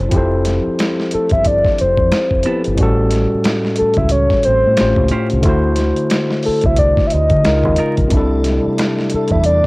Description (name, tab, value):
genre	R&B, neo-soul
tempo	90 BPM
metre	4/4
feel	swing 58% on 16ths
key	unclear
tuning	A4 = 442 Hz
part	barky tine electric piano	accompaniment	0.0-9.7 s	A2 to D5	-18 LUFS	left 1 dB	overdrive, cassette tape
part	deep dub fingered electric bass	bass	0.0-9.6 s	F1 to D3	-18 LUFS	equal	tube saturation
part	dusty soul sampler-style drum kit	drums	0.1-9.7 s	finger snaps, hi-hat, kick drum, snare drum	-19 LUFS	equal	overdrive, cassette tape
part	soft octave-layered synth lead	melody	1.1-9.7 s	A4 to E5	-16 LUFS	equal	chorus, cassette tape
part	clean electric guitar	second line	2.5-7.9 s	B3 to B#4	-25 LUFS	right 2 dB	cassette tape
part	tonewheel organ	sustained chords	8.1-9.7 s	C3 to E4	-26 LUFS	right 2 dB	slow rotary speaker, overdrive, chorus vibrato, cassette tape
room	light reverb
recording	home recording on cassette, vinyl crackle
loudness	-12 LUFS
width	side -23 dB against mid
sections	0.0-9.7 A section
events	none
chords	0.1 Fmaj9; 2.8 A6; 4.8 A7alt; 5.5 D9; 7.5 C#69; 8.1 C69